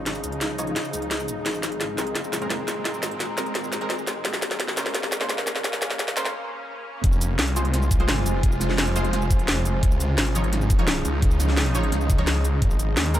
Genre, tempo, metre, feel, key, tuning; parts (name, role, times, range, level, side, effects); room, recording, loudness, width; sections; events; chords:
dark technical drum and bass; 172 BPM; 4/4; straight; F minor; A4 = 440 Hz
swarming drone; sustained chords; 0.0-13.2 s; Bb2 to F4; -32 LUFS; right 1 dB; built-in reverb, sidechain pumping
snarling distorted saw bass; bass; 0.0-13.2 s; F1 to Eb2; -26 LUFS; equal; distortion, overdrive
warbly tape-like pad; texture; 0.0-13.2 s; Db4 to C6; -32 LUFS; left 1 dB; chorus, built-in reverb, sidechain pumping
drum and bass drum kit; drums; 0.1-13.2 s; hi-hat, shaker, snare drum; -26 LUFS; equal
orchestra-hit-like synth stab; stabs; 0.6-13.2 s; F3 to Db5; -32 LUFS; right 1 dB; built-in reverb, tape echo
electronic kick drum; drums; 7.0-12.7 s; -20 LUFS; equal
light reverb, digital ambience; high-pass filter; -21 LUFS; side -12 dB against mid
0.0-7.0 A section; 7.0-13.2 B section
build-up 0.0-7.0; drum fill 0.0-6.3; filter sweep on synth stab 0.0-7.0; break 6.3-7.0; drop 7.0-13.2
0.0 Dbadd9; 1.5 Abadd9; 4.2 Bbmadd9; 7.0 Fm; 9.8 Dbadd9; 12.6 Abadd9